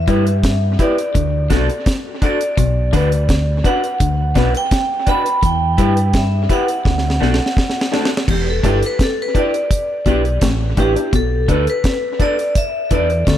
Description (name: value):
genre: roots reggae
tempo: 84 BPM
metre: 4/4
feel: straight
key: E minor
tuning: A4 = 440 Hz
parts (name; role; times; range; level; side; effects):
- vibraphone with hard mallets; melody; 0.0-13.4 s; G4 to B5; -21 LUFS; equal; dub echo
- deep dub fingered electric bass; bass; 0.0-13.4 s; E1 to G2; -17 LUFS; equal; none
- electric guitar through a small old amp; accompaniment; 0.1-13.1 s; A3 to B4; -24 LUFS; right 3 dB; spring reverb, dub echo
- electric guitar at the edge of break-up; riff; 0.1-13.4 s; E2 to G3; -25 LUFS; left 8 dB; none
- dark upright piano; stabs; 0.1-13.1 s; D4 to B4; -25 LUFS; left 6 dB; none
- deep reggae drum kit; drums; 0.1-13.4 s; crash cymbal, hi-hat, kick drum, snare drum; -18 LUFS; equal; dub echo
room: light reverb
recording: none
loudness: -14 LUFS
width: side -11 dB against mid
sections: 0.0-8.3 A section; 8.3-13.4 B section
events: drum fill 6.9-8.3; vibraphone solo 8.3-13.4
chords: 0.0 Em; 1.1 D; 2.6 Bm; 5.4 Em; 6.9 D; 8.3 Em7; 11.1 Bm7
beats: 0.44 1.15 1.86 | 2.58 3.29 4.00 4.71 | 5.43 6.14 6.85 7.57 | 8.28 8.99 9.71 10.42 | 11.13 11.85 12.56 13.27